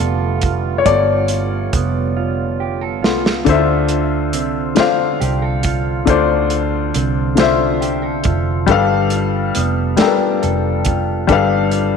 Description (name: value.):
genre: slow six-eight R&B.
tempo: 46 BPM (dotted quarters).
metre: 6/8.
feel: straight.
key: D dorian.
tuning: A4 = 439 Hz.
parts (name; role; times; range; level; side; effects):
mellow electric guitar; second line; 0.0-12.0 s; D3 to A4; -24 LUFS; right 14 dB; none.
dark baby grand piano; accompaniment; 0.0-12.0 s; D3 to G5; -16 LUFS; left 8 dB; none.
clear brass ensemble; sustained chords; 0.0-3.4 s; D3 to F4; -26 LUFS; right 11 dB; stereo widening.
vintage muted fingered electric bass; bass; 0.0-12.0 s; F1 to D2; -20 LUFS; right 2 dB; none.
warm soul drum kit; drums; 0.0-11.9 s; hi-hat, kick drum, snare drum; -19 LUFS; right 2 dB; none.
room: moderate echo chamber reverb, RT60 2.0 s, small room ambience.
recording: 1960s-style stereo with parts hard left and right.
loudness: -14 LUFS.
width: side -6 dB against mid.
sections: 0.0-3.5 A section; 3.5-12.0 A section.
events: grand piano solo 0.0-3.5; drum fill 2.2-3.5.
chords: 0.0 G9; 3.5 Dm7; 8.7 G9.